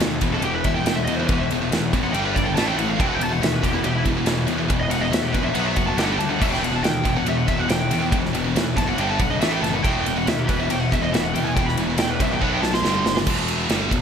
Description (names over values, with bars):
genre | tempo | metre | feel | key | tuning
heavy metal | 140 BPM | 4/4 | straight | E minor | A4 = 437 Hz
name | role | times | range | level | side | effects
heavy high-gain guitar | riff | 0.0-14.0 s | E2 to B3 | -28 LUFS | right 10 dB | distortion
high-gain distorted guitar | riff | 0.0-13.3 s | E2 to B3 | -29 LUFS | equal | distortion
tight distorted guitar | riff | 0.0-14.0 s | E2 to B3 | -26 LUFS | left 8 dB | distortion
fuzz picked electric bass | bass | 0.0-14.0 s | E1 to E2 | -27 LUFS | equal | overdrive
big rock drum kit | drums | 0.0-14.0 s | crash cymbal, kick drum, ride cymbal, snare drum | -24 LUFS | right 1 dB | gated reverb
high-gain lead guitar | melody | 0.3-13.1 s | E4 to C6 | -26 LUFS | equal | distortion
room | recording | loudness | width
moderate lush hall reverb, RT60 1.8 s, studio reverb | bright 1980s-style digital production | -19 LUFS | side -7 dB against mid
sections
0.0-13.3 A section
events
lead electric guitar solo 0.0-13.3; drum fill 12.4-13.3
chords
0.0 E5; 2.1 G5; 2.6 A5; 3.0 E5; 5.6 B5; 6.0 G5; 6.4 Em; 9.0 G5; 9.4 A5; 9.8 E5; 12.4 B5; 12.8 G5; 13.3 Em